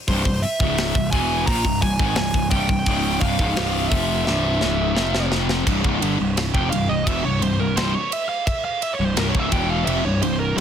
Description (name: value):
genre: heavy metal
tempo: 86 BPM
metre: 4/4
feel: straight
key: C phrygian dominant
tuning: A4 = 439 Hz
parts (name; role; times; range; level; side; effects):
- smooth overdriven lead guitar; melody; 0.1-10.6 s; Bb4 to Bb5; -25 LUFS; right 2 dB; digital delay
- distorted electric guitar; riff; 0.1-10.6 s; C2 to F3; -22 LUFS; left 1 dB; distortion
- fuzz picked electric bass; bass; 0.1-10.6 s; C1 to Bb1; -25 LUFS; equal; overdrive
- tight metal drum kit; drums; 0.1-10.6 s; hi-hat, kick drum, ride cymbal, snare drum; -24 LUFS; equal; none
room: little or no reverb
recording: dense, heavily limited modern master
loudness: -18 LUFS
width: side -8 dB against mid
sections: 0.0-5.7 A section; 5.7-10.6 B section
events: drum fill 4.3-5.7; lead electric guitar solo 5.7-10.6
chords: 0.0 C; 5.0 F5; 5.7 C